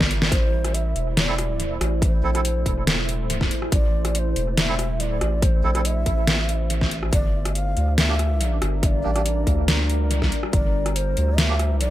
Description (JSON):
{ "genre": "deep dubstep", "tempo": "141 BPM", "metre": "4/4", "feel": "half-time", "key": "A phrygian", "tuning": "A4 = 440 Hz", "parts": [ { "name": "breathy long shakuhachi", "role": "melody", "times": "0.0-11.9 s", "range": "C5 to F5", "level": "-30 LUFS", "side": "left 1 dB", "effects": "dub echo" }, { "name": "deep dark ambient pad", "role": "sustained chords", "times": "0.0-11.9 s", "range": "G3 to C5", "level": "-31 LUFS", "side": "equal", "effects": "chorus, built-in reverb" }, { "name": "soft dub sub bass", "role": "bass", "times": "0.0-11.9 s", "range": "E1 to D2", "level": "-23 LUFS", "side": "equal", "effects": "none" }, { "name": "dubstep drum kit", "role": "drums", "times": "0.0-11.9 s", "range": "hi-hat, rim click, snare drum", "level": "-24 LUFS", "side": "equal", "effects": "overdrive, analog delay" }, { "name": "electronic kick drum", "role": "drums", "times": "0.0-10.6 s", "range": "none", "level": "-22 LUFS", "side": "equal", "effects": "overdrive" }, { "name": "melodica", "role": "stabs", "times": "1.3-11.6 s", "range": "Bb3 to A4", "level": "-31 LUFS", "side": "right 5 dB", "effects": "analog delay" } ], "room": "light reverb, digital ambience", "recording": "echo-heavy mix", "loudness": "-19 LUFS", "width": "side -14 dB against mid", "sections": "0.0-11.9 A section", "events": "drum fill 0.0-0.3", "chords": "0.3 Am; 7.1 Gm", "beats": "| 0.32 0.74 1.17 1.59 | 2.02 2.45 2.87 3.30 | 3.72 4.15 4.57 5.00 | 5.42 5.85 6.28 6.70 | 7.13 7.55 7.98 8.40 | 8.83 9.26 9.68 10.11 | 10.53 10.96 11.38 11.81" }